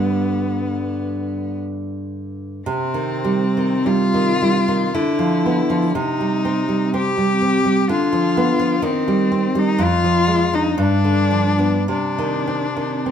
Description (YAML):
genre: romantic duo for cello and classical guitar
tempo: 48-64 BPM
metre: 3/4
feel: rubato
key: C minor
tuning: A4 = 439 Hz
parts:
  - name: rich cello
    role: melody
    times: 0.0-13.1 s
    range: B3 to G4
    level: -21 LUFS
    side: left 5 dB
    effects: none
  - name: nylon-string guitar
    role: accompaniment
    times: 0.0-13.1 s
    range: F2 to D4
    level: -18 LUFS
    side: right 2 dB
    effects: none
room: moderate recital hall reverb, RT60 1.4 s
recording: minimal, uncompressed stereo recording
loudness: -16 LUFS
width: side -8 dB against mid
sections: 0.0-13.1 A section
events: none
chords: 0.0 G; 2.7 Cm; 4.9 Bdim/D; 6.0 Cm; 7.9 Bdim/D; 8.8 Cm/Eb; 9.8 Ddim/F; 10.8 G7; 11.9 Cm